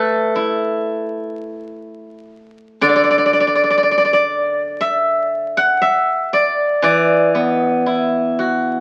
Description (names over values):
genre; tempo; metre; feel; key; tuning
chinese traditional, Chinese solo plucked strings; 60 BPM; 4/4; rubato; E shang mode; A4 = 442 Hz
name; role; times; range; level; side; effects
steel-string zither; solo; 0.0-8.8 s; D3 to F#5; -17 LUFS; equal; none
room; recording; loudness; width
wet studio reverb, RT60 0.5 s; very old 78 rpm record, vinyl crackle; -16 LUFS; mono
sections
0.0-8.8 A section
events
none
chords
none